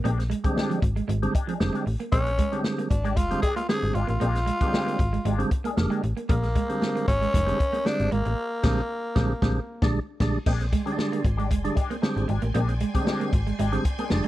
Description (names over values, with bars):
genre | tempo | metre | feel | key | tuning
funk | 115 BPM | 4/4 | straight | Bb mixolydian | A4 = 440 Hz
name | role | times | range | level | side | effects
electric guitar with an envelope filter | accompaniment | 0.0-6.2, 10.5-14.3 s | Ab3 to Ab4 | -34 LUFS | left 8 dB | wah
semi-hollow electric guitar | riff | 0.0-14.3 s | F3 to Bb3 | -32 LUFS | right 6 dB | none
percussive tonewheel organ | stabs | 0.0-14.3 s | C3 to D4 | -28 LUFS | right 2 dB | overdrive, chorus vibrato, fast rotary speaker
slap-like FM bass | bass | 0.0-14.2 s | F1 to Bb1 | -26 LUFS | equal | none
vintage drum kit | drums | 0.0-14.3 s | crash cymbal, hi-hat, kick drum, snare drum | -26 LUFS | equal | none
growling tenor saxophone | melody | 2.1-9.9 s | Bb3 to Ab4 | -28 LUFS | left 1 dB | none
string machine, violins | sustained chords | 10.5-14.3 s | D5 to C6 | -39 LUFS | equal | ensemble chorus
room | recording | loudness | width
studio ambience | dry, close 1970s-style studio recording | -22 LUFS | side -15 dB against mid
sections
0.0-10.5 A section; 10.5-14.3 B section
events
band accent 8.4-10.5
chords
0.0 Bb13